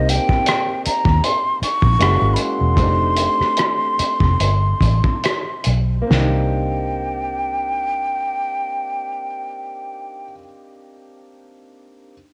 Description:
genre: R&B, neo-soul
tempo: 68-80 BPM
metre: 4/4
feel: swing 55% on 16ths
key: C dorian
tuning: A4 = 440 Hz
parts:
  - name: breathy concert flute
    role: melody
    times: 0.0-10.3 s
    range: Eb5 to Db6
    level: -23 LUFS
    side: equal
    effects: cassette tape
  - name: clear concert grand piano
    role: accompaniment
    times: 0.0-12.1 s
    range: G#3 to G4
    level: -30 LUFS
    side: equal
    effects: cassette tape
  - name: vintage muted fingered electric bass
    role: bass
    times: 0.0-10.3 s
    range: E1 to Eb2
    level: -21 LUFS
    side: equal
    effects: tube saturation
  - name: cloth-damped thuddy drum kit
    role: drums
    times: 0.1-6.3 s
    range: hi-hat, kick drum, rim click, snare drum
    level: -22 LUFS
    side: equal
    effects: cassette tape
room: small room reverb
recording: home recording on cassette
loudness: -19 LUFS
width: mono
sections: 0.0-6.1 A section; 6.1-9.6 B section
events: slowing down 0.0-6.1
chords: 0.0 Cm7; 2.0 F#9; 2.8 F13; 6.1 Cm9

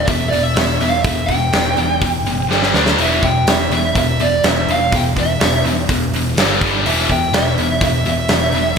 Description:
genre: hard rock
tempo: 124 BPM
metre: 4/4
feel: straight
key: E minor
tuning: A4 = 440 Hz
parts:
  - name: dark smooth lead guitar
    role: melody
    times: 0.0-8.8 s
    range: D5 to G5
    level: -19 LUFS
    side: right 2 dB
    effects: overdrive
  - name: high-gain distorted guitar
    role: riff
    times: 0.0-8.8 s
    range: E2 to D4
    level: -21 LUFS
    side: left 10 dB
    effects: distortion
  - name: tight distorted guitar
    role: riff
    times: 0.0-8.8 s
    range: E2 to D4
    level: -23 LUFS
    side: right 8 dB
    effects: distortion
  - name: picked electric bass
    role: bass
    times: 0.0-8.7 s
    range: E1 to D2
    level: -22 LUFS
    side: equal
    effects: none
  - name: big rock drum kit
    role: drums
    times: 0.1-8.8 s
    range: hi-hat, kick drum, snare drum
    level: -18 LUFS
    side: equal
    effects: none
room: moderate lush hall reverb, RT60 1.6 s, small room reverb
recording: bright 1980s-style digital production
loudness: -13 LUFS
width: side -6 dB against mid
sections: 0.0-8.8 A section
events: drum fill 2.5-3.0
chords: 0.0 Em; 2.5 G5; 2.7 D5; 3.0 E5; 6.4 G5; 6.8 E5

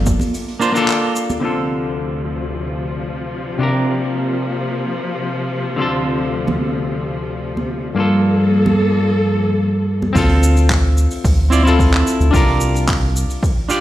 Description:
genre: sunset chillout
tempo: 110 BPM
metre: 4/4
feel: straight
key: D minor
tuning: A4 = 440 Hz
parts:
  - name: semi-hollow electric guitar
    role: accompaniment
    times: 0.0-13.8 s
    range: G2 to D5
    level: -18 LUFS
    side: equal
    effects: auto-pan, low-pass filter, tape echo
  - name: round analog bass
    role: bass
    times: 0.0-0.2, 10.2-13.3 s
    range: G1 to D2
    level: -14 LUFS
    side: equal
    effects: none
  - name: electronic kick drum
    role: drums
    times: 0.1-0.2, 10.2-13.5 s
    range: none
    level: -18 LUFS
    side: equal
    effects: overdrive
  - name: vintage brush drum kit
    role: drums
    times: 0.1-1.4, 10.2-13.8 s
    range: cabasa, handclaps, hi-hat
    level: -25 LUFS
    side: equal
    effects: none
  - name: congas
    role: percussion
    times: 0.2-1.4, 6.5-10.1 s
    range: none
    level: -23 LUFS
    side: right 2 dB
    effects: none
  - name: clear studio string section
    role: sustained chords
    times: 1.4-10.1 s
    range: D2 to A4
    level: -21 LUFS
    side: left 1 dB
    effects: stereo widening, low-pass filter
room: light reverb, studio reverb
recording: played on a big sound system in a bare room, stone room reverb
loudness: -15 LUFS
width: side -14 dB against mid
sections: 0.0-1.4 A section; 1.4-10.2 B section; 10.2-13.8 C section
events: band accent 0.9; filter sweep on clean electric guitar 1.4-10.2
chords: 0.0 Gm9; 1.4 Dm7; 3.6 C7sus4; 5.8 Dm7; 8.0 Gm9; 10.2 Dm7; 12.3 C7sus4

